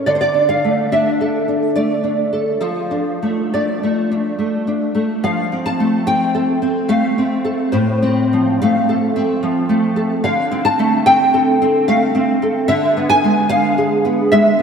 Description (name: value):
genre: romantic piece for solo classical guitar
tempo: 62-76 BPM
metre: 3/4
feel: rubato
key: D minor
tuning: A4 = 440 Hz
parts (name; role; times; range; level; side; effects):
- nylon-string guitar; solo; 0.0-14.6 s; A2 to A5; -14 LUFS; equal; ensemble chorus, analog delay
room: wet lush hall reverb, RT60 2.8 s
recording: dreamy mix soaked in reverb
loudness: -14 LUFS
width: side -6 dB against mid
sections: 0.1-14.6 A section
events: none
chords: 0.1 D5; 2.6 Dm/F; 5.2 F; 7.7 F/A; 10.2 Dm7; 12.7 E7/D